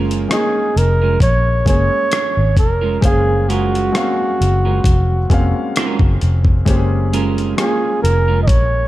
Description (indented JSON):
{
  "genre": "R&B, neo-soul",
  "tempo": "66 BPM",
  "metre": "4/4",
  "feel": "straight",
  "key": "unclear",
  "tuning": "A4 = 441 Hz",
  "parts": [
    { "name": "clean electric guitar", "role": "second line", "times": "0.0-8.4 s", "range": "G#3 to A#4", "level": "-24 LUFS", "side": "right 7 dB", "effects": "spring reverb" },
    { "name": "warm baby grand piano", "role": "accompaniment", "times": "0.0-8.9 s", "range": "G#3 to E#5", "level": "-23 LUFS", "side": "left 2 dB", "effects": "none" },
    { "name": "vintage muted fingered electric bass", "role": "bass", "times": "0.0-8.9 s", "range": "E#1 to A#1", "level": "-16 LUFS", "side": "equal", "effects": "none" },
    { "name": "dusty soul sampler-style drum kit", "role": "drums", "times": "0.1-8.7 s", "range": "hi-hat, kick drum, rim click", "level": "-17 LUFS", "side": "equal", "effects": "overdrive" },
    { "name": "breathy flugelhorn", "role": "melody", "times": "0.3-8.9 s", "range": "F#4 to D#5", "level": "-18 LUFS", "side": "right 2 dB", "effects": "none" }
  ],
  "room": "little or no reverb",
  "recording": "dark, warm production",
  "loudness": "-13 LUFS",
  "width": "side -15 dB against mid",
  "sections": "0.0-8.9 A section",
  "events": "none",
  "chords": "0.0 F#maj9"
}